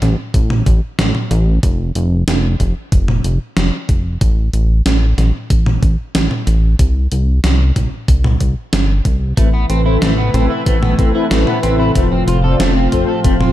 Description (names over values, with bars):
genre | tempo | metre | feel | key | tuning
synthwave | 93 BPM | 4/4 | straight | A minor | A4 = 441 Hz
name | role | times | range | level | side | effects
chorused synth bass | bass | 0.0-13.5 s | F1 to C2 | -14 LUFS | equal | sidechain pumping
gated 80s digital drum machine | drums | 0.0-13.5 s | hi-hat, snare drum, toms | -19 LUFS | right 1 dB | gated reverb, gated reverb snare, overdrive, studio reverb
electronic kick drum | drums | 0.3-13.4 s | none | -15 LUFS | equal | overdrive, studio reverb
analog string pad | sustained chords | 9.4-13.5 s | A2 to B4 | -18 LUFS | equal | ensemble chorus, sidechain pumping
electric guitar at the edge of break-up | arpeggios | 9.4-13.5 s | A3 to A4 | -22 LUFS | right 2 dB | wide subtle chorus, tape echo
mellow synth brass | stabs | 9.4-13.3 s | C4 to D5 | -20 LUFS | left 5 dB | chorus, tape echo
room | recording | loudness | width
digital ambience | dark, warm production | -12 LUFS | side -14 dB against mid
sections
0.0-13.5 A section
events
none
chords
0.0 N.C.; 6.8 C5; 9.4 Amadd9; 12.0 F